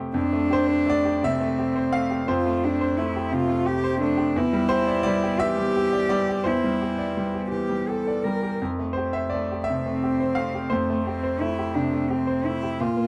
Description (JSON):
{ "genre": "neoclassical piano and strings", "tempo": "57 BPM (dotted quarters)", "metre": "6/8", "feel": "rubato", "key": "F major", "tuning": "A4 = 440 Hz", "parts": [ { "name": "bright grand piano", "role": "accompaniment", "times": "0.0-13.1 s", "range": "E2 to F5", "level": "-26 LUFS", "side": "equal", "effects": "none" }, { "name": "rich cello", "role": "second line", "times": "0.1-13.1 s", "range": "A3 to Bb4", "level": "-28 LUFS", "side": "equal", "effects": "none" } ], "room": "moderate booth ambience, RT60 0.3 s", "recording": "dark, warm production", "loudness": "-24 LUFS", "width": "mono", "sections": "0.2-13.1 A section", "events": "none", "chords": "0.2 Fadd9; 4.3 Cadd9/E; 8.6 Fadd9" }